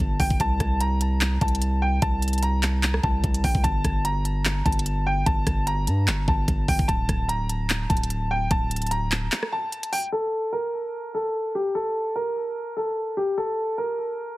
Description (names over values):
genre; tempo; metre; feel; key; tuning
hip hop, trap; 148 BPM; 4/4; half-time; unclear; A4 = 441 Hz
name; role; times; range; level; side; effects
bright baby grand piano; melody; 0.0-14.3 s; G4 to Bb5; -26 LUFS; equal; low-pass filter, digital delay
long sustained 808-style bass; bass; 0.0-9.3 s; D1 to G2; -24 LUFS; equal; none
trap drum kit; drums; 0.2-10.0 s; handclaps, hi-hat, kick drum, rim click; -24 LUFS; equal; none
room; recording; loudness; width
digital ambience; heavily compressed radio sound, multiband compression, low-pass filter; -22 LUFS; side -18 dB against mid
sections
0.0-10.1 A section; 10.1-14.4 B section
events
break 9.3-10.1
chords
0.4 Am; 3.6 Gm; 6.9 D5; 10.1 N.C.